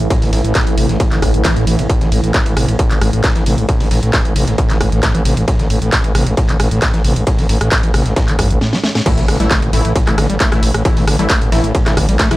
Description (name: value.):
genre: driving peak-time techno.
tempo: 134 BPM.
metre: 4/4.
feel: straight.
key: A minor.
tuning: A4 = 440 Hz.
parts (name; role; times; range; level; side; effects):
screaming distorted acid line; riff; 0.0-12.4 s; A1 to A3; -20 LUFS; equal; distortion, chorus, sidechain pumping, analog delay.
growling FM bass; bass; 0.0-12.4 s; A1; -17 LUFS; equal; sidechain pumping.
deep dark ambient pad; drone; 0.0-12.4 s; A2 to E3; -25 LUFS; right 1 dB; chorus, built-in reverb, sidechain pumping.
techno drum kit; drums; 0.0-12.4 s; crash cymbal, handclaps, hi-hat, rim click, snare drum; -20 LUFS; equal; sidechain pumping on hats, sidechain pumping on cymbals.
breakbeat sampler-style drum kit; drums; 0.1-12.3 s; hi-hat, ride cymbal, snare drum; -28 LUFS; equal; high-pass filter on cymbals, high-pass filter on snare, high-pass filter on hats.
electronic kick drum; drums; 0.1-12.3 s; none; -15 LUFS; equal; distortion.
supersaw stab; stabs; 9.1-12.4 s; E3 to E4; -21 LUFS; left 2 dB; phaser, sidechain pumping, analog delay.
impact; sound effects; 9.1-10.9 s; none; -24 LUFS; equal; none.
room: digital ambience.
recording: dry, gritty hardware recording.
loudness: -12 LUFS.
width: side -17 dB against mid.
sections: 0.0-9.1 A section; 9.1-12.4 B section.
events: drum fill 8.6-9.1; drop 9.1-12.4; impact 9.1-10.9.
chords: 0.0 A5.